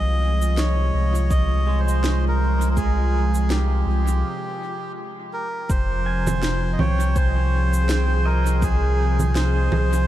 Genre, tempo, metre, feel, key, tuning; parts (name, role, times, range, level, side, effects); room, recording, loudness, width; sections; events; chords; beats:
ambient dub; 82 BPM; 4/4; swing 57% on 16ths; F minor; A4 = 440 Hz
melodica; melody; 0.0-10.1 s; G4 to Eb5; -27 LUFS; right 1 dB; dub echo
airy breathy pad; sustained chords; 0.0-10.1 s; C3 to Ab4; -28 LUFS; equal; chorus
warm sub bass; bass; 0.0-10.1 s; F1 to C2; -20 LUFS; equal
electronic shaker, snare drum and congas; drums; 0.4-10.1 s; -29 LUFS; right 2 dB; dub echo
electronic kick drum; drums; 1.3-8.8 s; -23 LUFS; equal
pedal steel guitar; arpeggios; 1.7-10.1 s; Ab3 to Ab5; -32 LUFS; right 6 dB; tape echo
light reverb; -18 LUFS; side -13 dB against mid
0.0-5.7 A section; 5.7-10.1 B section
break 4.2-5.7
0.0 Fmadd9; 5.7 Fm9
0.57 1.30 2.04 | 2.77 3.50 4.23 4.96 | 5.70 6.43 7.16 7.89 | 8.62 9.35